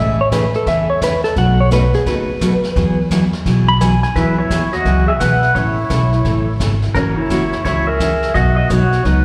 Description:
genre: country, western swing.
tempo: 172 BPM.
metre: 4/4.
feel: swing 64% on 8ths.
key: E major.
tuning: A4 = 439 Hz.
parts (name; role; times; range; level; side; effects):
clean lap steel guitar; second line; 0.0-4.2 s; G#4 to B5; -20 LUFS; equal; slapback echo.
picked steel-string acoustic guitar; accompaniment; 0.0-9.2 s; B2 to A4; -21 LUFS; equal; slapback echo.
upright bass; bass; 0.0-9.2 s; F#1 to E2; -20 LUFS; equal; none.
vintage brush drum kit; drums; 0.3-9.2 s; brushed snare drum, hi-hat, kick drum, snare drum; -28 LUFS; equal; none.
pedal steel guitar; melody; 4.2-9.2 s; C#4 to F#5; -21 LUFS; equal; slapback echo.
mellow clarinet; second line; 4.2-9.2 s; C#4 to B4; -26 LUFS; equal; slapback echo.
room: light reverb, studio reverb.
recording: live gig heard through the venue's PA, recital hall reverb.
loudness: -15 LUFS.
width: mono.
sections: 0.0-4.2 A section; 4.2-9.2 B section.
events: electric slide guitar solo 0.0-4.2.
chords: 0.0 Amaj7; 1.4 B7; 2.8 Eadd9; 5.6 A; 7.0 F#7; 8.4 B.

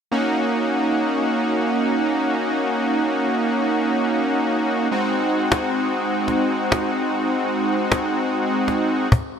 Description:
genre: dance-pop.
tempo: 100 BPM.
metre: 4/4.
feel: straight.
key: Eb dorian.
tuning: A4 = 439 Hz.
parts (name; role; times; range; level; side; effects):
big bright polysynth; accompaniment; 0.1-9.1 s; Ab3 to Gb4; -19 LUFS; equal; chorus.
cajon; drums; 5.5-9.3 s; none; -18 LUFS; left 1 dB; none.
room: moderate plate reverb, RT60 2.8 s.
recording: bright 1980s-style digital production.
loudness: -18 LUFS.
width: side -7 dB against mid.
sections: 0.1-9.4 A section.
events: none.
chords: 0.1 Ebm7; 4.9 Ab7.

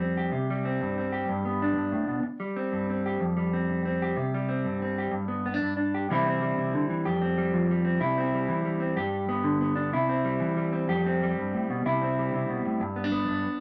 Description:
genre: highlife.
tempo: 125 BPM (dotted quarters).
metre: 12/8.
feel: straight.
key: C major.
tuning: A4 = 441 Hz.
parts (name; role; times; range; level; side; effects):
mellow electric guitar; solo; 0.0-13.6 s; F2 to G4; -28 LUFS; equal; none.
room: wet studio reverb, RT60 0.7 s.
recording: none.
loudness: -28 LUFS.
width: mono.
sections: 0.0-6.1 A section; 6.1-13.6 B section.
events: none.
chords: 0.3 C5; 1.3 G; 2.2 C5; 3.2 Fsus2; 4.2 C5; 5.1 G; 6.1 C; 7.0 Fsus2; 8.0 C; 9.0 G; 9.9 C; 10.9 Fadd9; 11.8 C; 12.8 G.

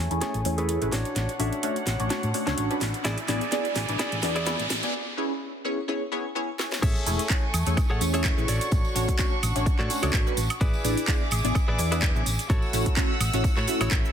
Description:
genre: filtered disco house.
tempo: 127 BPM.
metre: 4/4.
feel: swing 55% on 16ths.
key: A major.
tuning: A4 = 439 Hz.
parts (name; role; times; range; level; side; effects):
rich symphonic violin section; sustained chords; 0.0-14.1 s; A3 to E6; -33 LUFS; right 1 dB; sidechain pumping, low-pass filter.
hollow-body short-scale fingered electric bass; bass; 0.0-14.0 s; E1 to A2; -28 LUFS; equal; sidechain pumping, low-pass filter.
riser; sound effects; 1.6-4.9 s; none; -35 LUFS; right 1 dB; none.
funky polysynth comp; accompaniment; 0.1-14.1 s; A3 to E5; -29 LUFS; equal; chorus, phaser, sidechain pumping, low-pass filter.
house drum kit; drums; 0.1-14.1 s; cabasa, crash cymbal, handclaps, hi-hat, snare drum, woodblock; -31 LUFS; right 2 dB; soft clipping on snare.
direct-recorded clean electric guitar; riff; 0.2-14.1 s; D4 to F#5; -33 LUFS; left 1 dB; vintage 12-bit sampler grit, sidechain pumping, low-pass filter.
electronic kick drum; drums; 6.8-14.0 s; none; -24 LUFS; equal; none.
tambourine; percussion; 6.8-14.0 s; none; -38 LUFS; right 2 dB; sidechain pumping on perc, low-pass filter on perc.
room: light reverb.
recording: dense, heavily limited modern master, high-pass filter.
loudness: -23 LUFS.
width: side -8 dB against mid.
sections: 0.0-6.8 A section; 6.8-14.1 B section.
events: build-up 0.0-6.8; drum fill 0.0-4.9, 6.6; filter sweep 0.0-6.8; riser 1.6-4.9; break 4.9-6.8; drop 6.8-14.1.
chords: 0.0 Amaj7; 0.9 Dmaj7/A; 3.0 E7/A; 4.9 E6/B; 6.8 Amaj7; 8.5 Dmaj7/A; 10.6 E7/A; 12.5 F#m7/A.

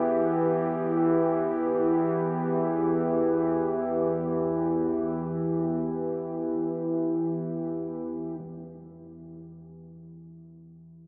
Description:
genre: dark ambient drone.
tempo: free time.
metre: none.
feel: none.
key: E minor.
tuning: A4 = 441 Hz.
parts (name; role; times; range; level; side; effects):
sweeping resonant pad; sustained chords; 0.0-8.4 s; E3 to G4; -29 LUFS; equal; chorus.
analog drone; drone; 0.0-11.1 s; E2 to E3; -28 LUFS; equal; chorus.
impact; percussion; 8.4-8.6 s; none; -57 LUFS; equal; none.
room: wet cathedral reverb, RT60 5.7 s.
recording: AM radio sound.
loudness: -24 LUFS.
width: side -36 dB against mid.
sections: 0.0-8.4 A section; 8.4-11.1 B section.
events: none.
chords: 0.0 Em; 8.4 N.C..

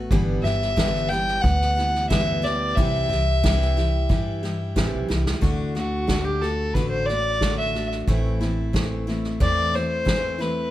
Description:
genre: acoustic folk duo or small band.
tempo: 90 BPM.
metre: 4/4.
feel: straight.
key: D mixolydian.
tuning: A4 = 440 Hz.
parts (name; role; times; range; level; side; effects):
picked steel-string acoustic guitar; accompaniment; 0.0-10.7 s; G2 to G4; -27 LUFS; left 1 dB; none.
upright bass; bass; 0.0-10.7 s; G1 to G2; -26 LUFS; equal; none.
soft-mallet drum kit; drums; 0.1-10.5 s; kick drum, snare drum; -25 LUFS; equal; none.
warm fiddle; melody; 0.4-10.7 s; F#4 to G5; -24 LUFS; left 1 dB; none.
room: light reverb.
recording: none.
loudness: -20 LUFS.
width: side -14 dB against mid.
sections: 0.0-5.4 A section; 5.4-10.7 B section.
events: drum fill 5.1-5.4; fiddle solo 5.4-10.7.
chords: 0.1 G6; 2.8 C; 5.4 D; 8.1 Am.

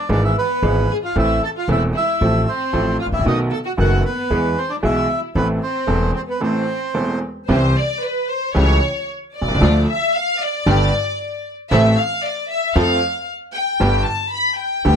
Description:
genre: tango.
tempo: 114 BPM.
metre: 4/4.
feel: rubato.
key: A harmonic minor, C major from 7.5 s.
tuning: A4 = 441 Hz.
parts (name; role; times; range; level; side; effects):
bandoneon; melody; 0.0-7.2 s; B4 to A5; -22 LUFS; right 2 dB; none.
warm symphonic violin section; second line; 0.0-15.0 s; B3 to B5; -22 LUFS; left 2 dB; none.
bright upright piano; accompaniment; 0.1-15.0 s; E1 to A4; -20 LUFS; right 2 dB; none.
upright bass; bass; 0.1-15.0 s; E1 to F2; -19 LUFS; equal; none.
dark chamber string section; stabs; 7.5-15.0 s; A3 to A4; -25 LUFS; left 2 dB; none.
room: light reverb.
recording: close, detailed microphones.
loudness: -16 LUFS.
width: side -7 dB against mid.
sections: 0.0-7.5 A section; 7.5-15.0 B section.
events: violin section solo 7.5-15.0.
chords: 0.1 E/G#; 1.2 Am; 2.2 F/A; 3.3 B7; 4.3 E; 5.4 Am; 7.5 C; 8.6 A7/C#; 9.6 Dm; 10.7 G; 11.7 Am; 12.8 F; 13.8 G.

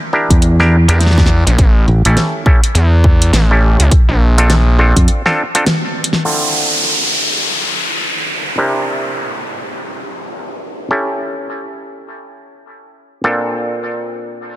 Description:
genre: glitch hop.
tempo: 103 BPM.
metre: 4/4.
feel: swing 60% on 16ths.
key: D minor.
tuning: A4 = 445 Hz.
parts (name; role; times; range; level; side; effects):
auto-wah clav; stabs; 0.1-14.6 s; Bb2 to Bb4; -18 LUFS; equal; sidechain pumping, low-pass filter, dub echo.
modern bright fingered electric bass; bass; 0.3-5.1 s; A1 to F2; -10 LUFS; equal; none.
electronic kick drum; drums; 0.3-5.1 s; none; -11 LUFS; equal; none.
pop drum kit; drums; 0.3-6.2 s; hi-hat, rim click, snare drum; -18 LUFS; equal; low-pass filter on hats, soft clipping on snare, low-pass filter on snare.
gritty driven synth bass; bass; 0.9-4.9 s; A1 to E2; -10 LUFS; equal; tube saturation.
downlifter and reverse cymbal; sound effects; 6.2-10.9, 14.5-14.6 s; none; -17 LUFS; equal; none.
room: light reverb.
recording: dense, heavily limited modern master.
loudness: -10 LUFS.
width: side -14 dB against mid.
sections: 0.0-6.2 A section; 6.2-14.6 B section.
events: drop 0.0-6.2; break 5.1-6.2; band accent 5.7; drum fill 6.0; filter sweep on clav 6.2-14.6; reverse cymbal 14.5.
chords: 0.0 Gm6; 1.6 A7; 3.9 Bbmaj7; 6.2 Dm7; 8.6 C7; 10.9 A7; 13.2 Bbmaj7.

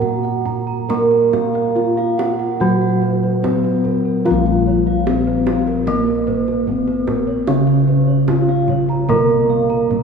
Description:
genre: Javanese gamelan.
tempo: 67-74 BPM.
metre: 4/4.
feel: straight.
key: Bb pelog.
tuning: A4 = 440 Hz.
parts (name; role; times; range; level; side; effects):
gamelan-type bronze metallophone; melody; 0.0-10.0 s; Bb3 to Bb4; -19 LUFS; right 1 dB; none.
gamelan-type bronze metallophone; accompaniment; 0.0-10.0 s; Db3 to Bb3; -19 LUFS; left 1 dB; none.
gamelan-type bronze metallophone; arpeggios; 0.0-10.0 s; Bb4 to Bb5; -24 LUFS; right 2 dB; none.
gamelan-type bossed gongs; bass; 0.0-10.0 s; Bb1 to Bb4; -22 LUFS; equal; none.
kendang; percussion; 0.0-10.0 s; none; -27 LUFS; right 4 dB; none.
room: wet cathedral reverb, RT60 5.1 s.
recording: recorded in a church or concert hall, studio ambience.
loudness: -14 LUFS.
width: side -6 dB against mid.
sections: 0.0-4.3 A section; 4.3-10.0 B section.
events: none.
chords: none.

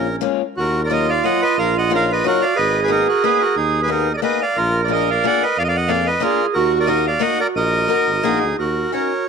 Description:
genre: musette waltz.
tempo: 179 BPM.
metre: 3/4.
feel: swing 54% on 8ths, rubato.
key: Eb harmonic minor.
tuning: A4 = 436 Hz.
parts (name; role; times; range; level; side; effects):
accordion; melody; 0.0-9.3 s; Eb4 to Gb5; -18 LUFS; right 2 dB; none.
clear clarinet; second line; 0.0-9.3 s; Db4 to Bb4; -22 LUFS; right 9 dB; none.
picked old ladder-braced acoustic guitar; accompaniment; 0.0-9.1 s; Gb3 to Bb4; -23 LUFS; left 15 dB; none.
breathy tuba; bass; 0.0-8.9 s; Ab1 to F2; -24 LUFS; left 1 dB; transformer saturation.
room: moderate echo chamber reverb, RT60 1.7 s, small room ambience.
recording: 1960s-style stereo with parts hard left and right.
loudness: -15 LUFS.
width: side -6 dB against mid.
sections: 0.6-8.6 A section.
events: none.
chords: 0.0 Bbm7; 0.6 Ebmadd9; 2.6 Abmadd9; 4.6 Bb7; 6.6 Ebm; 8.6 Ebm7.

